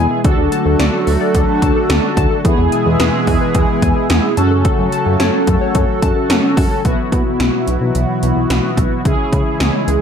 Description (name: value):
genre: synth-pop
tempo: 109 BPM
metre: 4/4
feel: straight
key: unclear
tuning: A4 = 441 Hz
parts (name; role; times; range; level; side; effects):
- mellow synth brass; accompaniment; 0.0-10.0 s; B3 to A4; -18 LUFS; equal; chorus, phaser
- chorused pulse-width pad; sustained chords; 0.0-10.0 s; B2 to A4; -20 LUFS; equal; none
- warbly dusty pluck; arpeggios; 0.0-6.8 s; G#4 to A5; -23 LUFS; left 6 dB; chorus, ping-pong delay
- chorused synth bass; bass; 0.0-10.0 s; B1 to C#3; -17 LUFS; equal; none
- 80s electronic pad drums; drums; 0.2-10.0 s; hi-hat, kick drum, snare drum; -17 LUFS; equal; overdrive, gated reverb
room: light reverb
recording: none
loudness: -12 LUFS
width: side -7 dB against mid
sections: 0.0-6.9 A section; 6.9-10.0 B section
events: none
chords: 0.2 D; 2.4 E; 4.4 F#m; 6.9 Bsus4; 9.1 C#m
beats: | 0.25 0.80 1.35 1.90 | 2.45 3.00 3.55 4.10 | 4.65 5.20 5.75 6.30 | 6.85 7.40 7.95 8.50 | 9.05 9.60